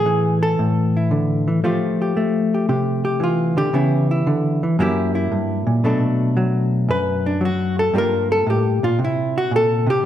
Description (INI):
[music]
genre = solo jazz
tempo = 114 BPM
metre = 4/4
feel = swing 69% on 8ths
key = unclear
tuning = A4 = 442 Hz
[part]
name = hollow-body jazz guitar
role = solo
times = 0.0-10.0 s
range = F#2 to B4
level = -17 LUFS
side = equal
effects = none
[sound]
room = wet recital hall reverb, RT60 1.6 s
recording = recorded in a church or concert hall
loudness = -17 LUFS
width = side -11 dB against mid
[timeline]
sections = 0.0-1.6 A section; 1.6-10.1 B section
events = hollow-body jazz guitar solo 1.6-10.1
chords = 0.0 Amaj7(no3); 1.6 Fmaj9; 3.7 C#m7b5; 4.8 F#7b9; 5.8 Bm7; 7.9 Gm7; 9.0 C7#11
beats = 0.07 0.60 1.12 | 1.65 2.17 2.69 3.22 | 3.74 4.27 4.79 5.31 | 5.84 6.36 6.88 7.41 | 7.93 8.46 8.98 9.50 | 10.03